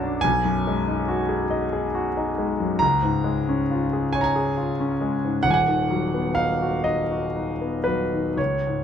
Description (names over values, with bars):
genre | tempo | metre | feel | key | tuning
classical, romantic nocturne for solo piano | 37-48 BPM (dotted quarters) | 6/8 | rubato | unclear | A4 = 439 Hz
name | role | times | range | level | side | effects
clear concert grand piano | solo | 0.0-8.8 s | D#1 to A#5 | -21 LUFS | left 1 dB | none
room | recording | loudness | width
moderate large studio reverb, RT60 0.9 s | dark, warm production | -21 LUFS | side -8 dB against mid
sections
0.0-8.8 A section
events
none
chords
0.2 G#m7/B; 2.8 C#; 5.4 B/D#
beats
| 0.25 1.52 | 2.83 4.13 | 5.44 6.86 | 8.39